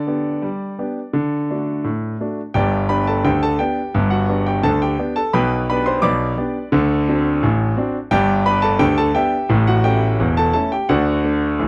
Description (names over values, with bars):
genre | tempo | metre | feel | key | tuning
ragtime piano | 86 BPM | 2/4 | straight | G major | A4 = 440 Hz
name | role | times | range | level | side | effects
clear concert grand piano | solo | 0.0-11.7 s | E1 to D6 | -18 LUFS | equal | none
room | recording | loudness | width
small room ambience | dry, close 1970s-style studio recording | -19 LUFS | mono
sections
0.0-2.6 A section; 2.6-11.7 B section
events
none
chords
0.0 G/D; 1.1 D; 2.6 G; 5.3 G/B; 6.7 D7; 8.1 G; 9.5 A7; 10.9 D